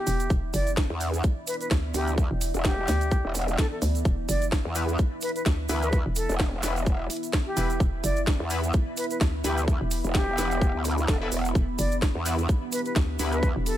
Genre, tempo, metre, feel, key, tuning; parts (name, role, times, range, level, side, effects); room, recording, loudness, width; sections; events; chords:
bass house; 128 BPM; 4/4; swing 56% on 16ths; E minor; A4 = 440 Hz
concert flute; melody; 0.0-13.8 s; G4 to D5; -32 LUFS; equal; dub echo
deep dark ambient pad; texture; 0.0-13.8 s; B3 to B5; -36 LUFS; right 2 dB; chorus, built-in reverb, sidechain pumping
hollow knocking FM bass; bass; 0.1-13.8 s; E1 to D2; -28 LUFS; equal; sidechain pumping
garage drum kit; drums; 0.1-13.8 s; hi-hat, snare drum; -33 LUFS; equal; studio ambience
egg shaker; percussion; 0.1-13.8 s; -37 LUFS; right 5 dB
electronic kick drum; drums; 0.3-13.5 s; -24 LUFS; equal; studio ambience
growl bass; bass; 0.9-13.5 s; E1 to E2; -27 LUFS; equal; chorus, tube saturation, sidechain pumping
dark analog pad; sustained chords; 4.1-13.8 s; B3 to E5; -37 LUFS; right 1 dB; chorus, sidechain pumping
band-passed chord stab; stabs; 4.8-13.3 s; E3 to B4; -37 LUFS; left 4 dB; chorus, sidechain pumping, dub echo
digital ambience; -23 LUFS; side -12 dB against mid
0.0-13.8 A section
0.0 E5